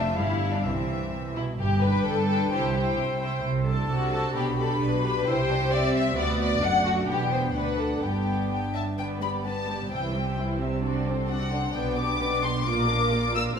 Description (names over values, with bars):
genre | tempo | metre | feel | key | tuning
quick classical-period movement for string orchestra | 131 BPM | 2/4 | straight | G major | A4 = 441 Hz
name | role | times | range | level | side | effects
warm symphonic violin section | melody | 0.0-13.6 s | E5 to E6 | -32 LUFS | left 4 dB | none
warm symphonic viola section | accompaniment | 0.0-13.6 s | E3 to C5 | -30 LUFS | right 1 dB | none
warm studio double bass section | bass | 0.0-13.6 s | E1 to D2 | -30 LUFS | right 2 dB | none
warm symphonic cello section | bass | 0.0-13.6 s | D2 to C3 | -31 LUFS | right 1 dB | none
rich studio violin section | second line | 0.2-13.6 s | C4 to F#5 | -29 LUFS | left 3 dB | none
room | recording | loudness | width
wet recital hall reverb, RT60 1.8 s | recorded in a church or concert hall | -23 LUFS | side -7 dB against mid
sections
0.0-1.6 A section; 1.6-9.0 B section; 9.0-13.6 B section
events
none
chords
0.2 Dmadd11/G; 0.6 C; 1.6 G; 2.5 C; 3.4 D7/C; 4.4 G/B; 5.3 Cadd9; 6.2 D; 7.1 Em; 7.5 D; 8.0 G; 9.9 C; 10.8 D7/C; 11.7 G/B; 12.7 Bb